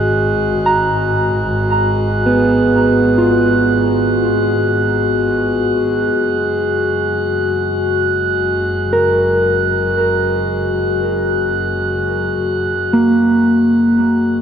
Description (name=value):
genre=ambient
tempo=free time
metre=none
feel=none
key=unclear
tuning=A4 = 441 Hz
part: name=dark symphonic double bass section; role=bass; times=0.0-14.4 s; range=F#1 to G#1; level=-22 LUFS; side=equal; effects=none
part: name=hand-pumped harmonium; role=drone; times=0.0-14.4 s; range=G#3 to G#4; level=-22 LUFS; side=left 1 dB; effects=none
part: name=glass harmonica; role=texture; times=0.0-14.4 s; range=F#4 to F#6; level=-18 LUFS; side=left 1 dB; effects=none
part: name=mellow electric guitar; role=arpeggios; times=0.7-14.4 s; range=A#3 to A#5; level=-16 LUFS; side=right 1 dB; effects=diffuse ambient delay
room=wet huge ambient reverb, RT60 7.0 s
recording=dark, warm production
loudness=-13 LUFS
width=side -8 dB against mid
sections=0.0-14.4 A section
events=fade-in on clean electric guitar 0.0-14.4; fade-out on double bass section 0.0-14.4; fade-out on harmonium 0.0-14.4; fade-out 11.8-14.4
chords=0.0 G#m7; 6.1 F#add9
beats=free time